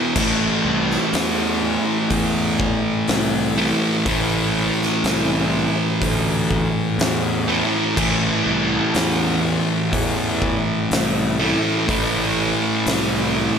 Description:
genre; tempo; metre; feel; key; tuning
stoner and doom metal; 61 BPM; 4/4; straight; unclear; A4 = 438 Hz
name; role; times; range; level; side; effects
fuzz guitar; riff; 0.0-13.6 s; E2 to A3; -19 LUFS; equal; distortion
fuzz fingered electric bass; bass; 0.2-13.5 s; A1 to E2; -26 LUFS; equal; overdrive
oversized low-tuned drum kit; drums; 0.2-13.1 s; crash cymbal, hi-hat, kick drum, snare drum; -24 LUFS; left 1 dB; none
room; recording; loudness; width
little or no reverb; none; -17 LUFS; side -7 dB against mid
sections
0.0-13.6 A section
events
none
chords
0.2 Am

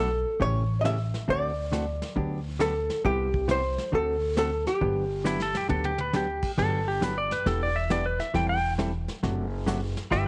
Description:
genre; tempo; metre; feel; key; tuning
country, western swing; 136 BPM; 4/4; swing 66% on 8ths; G major; A4 = 443 Hz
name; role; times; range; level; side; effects
hollow-body jazz guitar; melody; 0.0-6.1 s; G4 to E5; -30 LUFS; equal; none
hollow-body jazz guitar; accompaniment; 0.0-10.3 s; C3 to A4; -33 LUFS; equal; none
upright bass; bass; 0.0-10.3 s; E1 to D2; -33 LUFS; equal; none
vintage brush drum kit; drums; 0.4-10.3 s; brushed snare drum, crash cymbal, hi-hat, kick drum, snare drum, toms; -38 LUFS; equal; vintage 12-bit sampler grit
clean lap steel guitar; second line; 5.3-10.3 s; E4 to G5; -30 LUFS; equal; none
room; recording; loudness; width
light reverb, small room ambience; none; -27 LUFS; mono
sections
0.0-6.6 A section; 6.6-10.3 B section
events
drum fill 5.3-6.1; electric slide guitar solo 6.6-10.3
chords
0.4 A7; 1.3 D7; 2.2 Gmaj7/D; 3.0 Cmaj7; 3.9 D7; 4.8 Gmaj7; 7.5 Em7; 8.3 Am7/E; 9.2 D7/F#

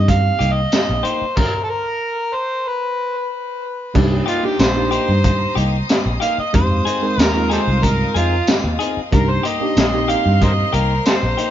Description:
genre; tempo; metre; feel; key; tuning
straight-eighth soul blues; 93 BPM; 4/4; straight; C minor; A4 = 440 Hz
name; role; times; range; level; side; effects
overdriven harmonica; melody; 0.0-11.5 s; F4 to F5; -21 LUFS; right 1 dB; digital delay
tine electric piano; accompaniment; 0.0-10.8 s; Ab3 to Bb4; -23 LUFS; right 2 dB; none
vintage muted fingered electric bass; bass; 0.0-11.3 s; Bb1 to G2; -19 LUFS; equal; none
crunchy breakbeat drum kit; drums; 0.1-11.5 s; crash cymbal, hi-hat, kick drum, snare drum, tambourine; -18 LUFS; equal; none
clean electric guitar; stabs; 0.4-11.5 s; Bb3 to Ab4; -26 LUFS; left 6 dB; none
warm studio string section; sustained chords; 3.9-11.5 s; C5 to Eb6; -29 LUFS; left 1 dB; none
room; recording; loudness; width
moderate stone room reverb, RT60 1.2 s; band playing live in one room, nothing above 7.5 kHz; -15 LUFS; side -11 dB against mid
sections
0.0-3.9 A section; 3.9-11.5 B section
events
stop 1.4-3.9; harmonica solo 3.9-11.5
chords
0.0 Cm7; 2.7 N.C.; 3.9 Cm7; 6.5 Fm7; 9.1 Cm7

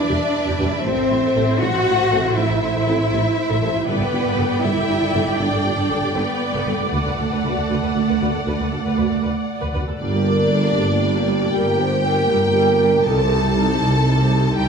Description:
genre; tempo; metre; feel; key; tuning
cinematic, epic orchestral film score; 79 BPM (dotted quarters); 12/8; straight; G minor from 10.0 s; A4 = 440 Hz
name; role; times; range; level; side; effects
rich symphonic violin section; melody; 0.0-14.7 s; D5 to A5; -26 LUFS; left 3 dB; none
rich symphonic violin section; second line; 0.0-14.7 s; D4 to F#5; -26 LUFS; left 2 dB; none
clear symphonic viola section; accompaniment; 0.0-14.7 s; G3 to D5; -26 LUFS; right 1 dB; none
dark symphonic cello section; bass; 0.0-14.7 s; G2 to F#4; -23 LUFS; right 2 dB; none
mellow tuba; bass; 0.1-14.7 s; E1 to D2; -24 LUFS; right 2 dB; none
rich symphonic double bass section; bass; 0.1-14.7 s; G1 to E2; -25 LUFS; right 1 dB; none
dark French horn section; sustained chords; 0.6-14.7 s; G3 to C5; -24 LUFS; equal; none
room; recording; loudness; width
wet scoring stage reverb, RT60 1.8 s; small room ambience; -16 LUFS; side -6 dB against mid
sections
0.0-10.0 A section; 10.0-14.7 B section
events
none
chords
0.0 Em; 0.8 Am; 3.9 Gadd9; 6.9 D6; 10.0 Gm; 13.1 Cm

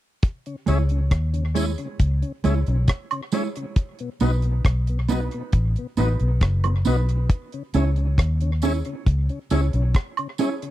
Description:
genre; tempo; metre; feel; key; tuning
roots reggae; 68 BPM; 4/4; straight; C# minor; A4 = 440 Hz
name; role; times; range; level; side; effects
deep reggae drum kit; drums; 0.2-10.7 s; hi-hat, kick drum, rim click; -20 LUFS; equal; none
tonewheel organ; accompaniment; 0.5-10.7 s; B2 to E4; -30 LUFS; left 5 dB; slow rotary speaker
mellow electric guitar; accompaniment; 0.7-10.5 s; G#3 to C#5; -27 LUFS; right 5 dB; spring reverb, tape echo
vintage muted fingered electric bass; bass; 0.7-9.9 s; F#1 to D#2; -21 LUFS; equal; none
tambourine and woodblock; percussion; 0.7-10.6 s; none; -32 LUFS; right 8 dB; none
room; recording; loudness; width
little or no reverb; dry, close 1970s-style studio recording; -20 LUFS; side -14 dB against mid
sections
0.2-10.7 A section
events
none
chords
0.2 C#m; 3.8 B; 7.3 C#m

